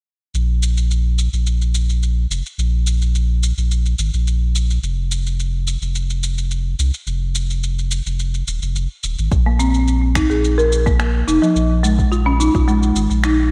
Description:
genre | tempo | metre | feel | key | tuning
organic downtempo | 107 BPM | 4/4 | straight | unclear | A4 = 442 Hz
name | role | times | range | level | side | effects
warm sub bass | bass | 0.3-13.5 s | Eb1 to C2 | -20 LUFS | equal | none
electronic shaker and finger snaps | drums | 0.3-13.4 s | none | -29 LUFS | equal | studio reverb
electronic kick drum | drums | 9.3-12.7 s | none | -21 LUFS | equal | studio reverb
folk marimba with medium mallets | arpeggios | 9.5-13.5 s | F3 to Bb4 | -19 LUFS | equal | tape echo, slapback echo
room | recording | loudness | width
light reverb | none | -18 LUFS | mono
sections
0.3-13.5 A section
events
filter sweep on sub bass 0.3-13.5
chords
0.3 Bb5; 4.8 N.C.; 9.3 Bb7sus2

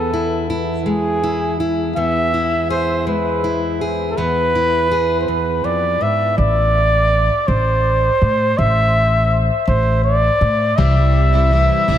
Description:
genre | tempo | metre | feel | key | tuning
indie folk with a building arrangement | 54 BPM (dotted quarters) | 6/8 | straight | A harmonic minor | A4 = 441 Hz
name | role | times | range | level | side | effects
dark trumpet | melody | 0.0-12.0 s | G#4 to E5 | -17 LUFS | equal | ping-pong delay
fingerpicked plugged-in steel-string acoustic guitar | accompaniment | 0.0-6.4 s | E2 to G#4 | -21 LUFS | left 1 dB | none
upright bass | bass | 6.4-12.0 s | A1 to A2 | -16 LUFS | equal | none
picked plugged-in steel-string acoustic guitar | accompaniment | 10.8-12.0 s | C3 to E4 | -20 LUFS | left 4 dB | lush chorus
room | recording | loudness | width
moderate cathedral reverb, RT60 6.3 s | dreamy mix soaked in reverb | -14 LUFS | side -10 dB against mid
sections
0.0-6.4 A section; 6.4-12.0 B section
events
none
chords
0.0 E; 6.4 Am; 10.8 C

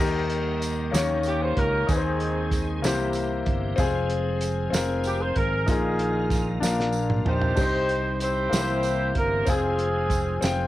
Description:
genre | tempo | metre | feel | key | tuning
slow gospel | 63 BPM (dotted quarters) | 6/8 | straight | Eb major | A4 = 442 Hz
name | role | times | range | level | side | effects
clear concert grand piano | accompaniment | 0.0-10.7 s | Bb2 to G5 | -27 LUFS | left 4 dB | none
tonewheel organ | sustained chords | 0.0-10.7 s | C3 to Bb4 | -37 LUFS | right 7 dB | chorus vibrato, slow rotary speaker
fingered electric bass | bass | 0.0-10.7 s | F1 to Eb2 | -28 LUFS | right 2 dB | none
warm soul drum kit | drums | 0.3-10.6 s | hi-hat, kick drum, snare drum, splash cymbal, toms | -27 LUFS | right 1 dB | cassette tape
tambourine | percussion | 0.6-10.7 s | none | -38 LUFS | right 8 dB | none
dark horn section | melody | 1.3-10.7 s | C4 to C5 | -26 LUFS | equal | cassette tape
room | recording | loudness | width
light reverb | home recording on cassette | -22 LUFS | side -15 dB against mid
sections
0.0-10.7 A section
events
drum fill 6.6-7.6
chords
0.0 Eb; 0.9 Eb7; 1.9 Ab/Eb; 2.8 C7; 3.8 Fm; 5.7 Bbsus4; 6.6 Bb; 7.6 Cm; 8.5 C7; 9.5 Fm

